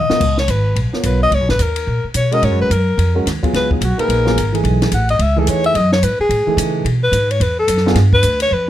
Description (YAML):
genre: modal jazz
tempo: 217 BPM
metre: 4/4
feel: swing 61% on 8ths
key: unclear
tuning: A4 = 440 Hz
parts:
  - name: breathy alto saxophone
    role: melody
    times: 0.0-8.7 s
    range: Eb4 to Gb5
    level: -17 LUFS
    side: left 2 dB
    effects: none
  - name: upright bass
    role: bass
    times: 0.0-8.7 s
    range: Ab1 to Db3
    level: -16 LUFS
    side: equal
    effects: none
  - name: dark baby grand piano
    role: accompaniment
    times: 0.1-8.0 s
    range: Fb3 to Eb5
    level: -20 LUFS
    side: right 2 dB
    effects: none
  - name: compact cocktail drum kit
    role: drums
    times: 0.1-8.5 s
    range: crash cymbal, hi-hat, kick drum, ride cymbal, snare drum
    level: -23 LUFS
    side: left 2 dB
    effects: none
room: light reverb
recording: none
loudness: -13 LUFS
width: side -12 dB against mid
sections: 0.2-8.7 A section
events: drum fill 0.0; alto saxophone solo 0.0-8.7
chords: 0.2 Db13sus4; 4.6 Cb13sus4; 8.0 G7